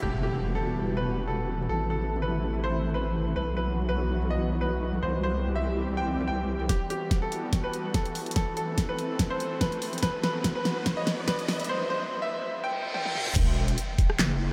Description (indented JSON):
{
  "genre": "heavy wobble dubstep",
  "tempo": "144 BPM",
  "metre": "4/4",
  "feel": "swing 54% on 16ths, half-time",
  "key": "E minor",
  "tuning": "A4 = 439 Hz",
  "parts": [
    { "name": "bright baby grand piano", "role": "melody", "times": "0.0-13.2 s", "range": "G4 to G5", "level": "-34 LUFS", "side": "equal", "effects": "delay" },
    { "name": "supersaw pad", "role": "sustained chords", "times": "0.0-11.7 s", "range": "C3 to B4", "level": "-36 LUFS", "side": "equal", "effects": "subtle chorus, sidechain pumping, low-pass filter" },
    { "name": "wobble bass", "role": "bass", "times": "0.0-6.7, 13.4-14.5 s", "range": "E1 to C2", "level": "-31 LUFS", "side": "equal", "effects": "chorus, overdrive" },
    { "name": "impact, riser, reverse cymbal and sub drop", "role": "sound effects", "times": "0.0-1.7, 8.9-14.5 s", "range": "none", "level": "-38 LUFS", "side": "equal", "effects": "none" },
    { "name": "dubstep drum kit", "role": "drums", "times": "6.7-14.3 s", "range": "crash cymbal, handclaps, hi-hat, rim click, snare drum, toms", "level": "-34 LUFS", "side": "equal", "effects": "none" },
    { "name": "electronic kick drum", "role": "drums", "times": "6.7-14.1 s", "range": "none", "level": "-29 LUFS", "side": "equal", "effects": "none" }
  ],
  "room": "wet huge ambient reverb, RT60 8.1 s",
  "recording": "dreamy mix soaked in reverb, high-pass filter",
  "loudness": "-28 LUFS",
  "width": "mono",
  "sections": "0.0-6.7 A section; 6.7-13.4 B section; 13.4-14.5 C section",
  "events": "impact 0.0-1.7, 13.4-14.5; build-up 6.7-13.4; drum fill 6.7-11.7, 12.9-13.4; filter sweep 6.7-13.4; riser 8.9-11.7; reverse cymbal 12.7-13.4; drop 13.4-14.5",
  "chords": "0.0 Emadd9; 1.7 Am; 3.4 Bsus4; 5.0 C; 6.7 Emadd9; 8.4 Am; 10.0 Bsus4; 11.7 N.C.; 13.4 E5"
}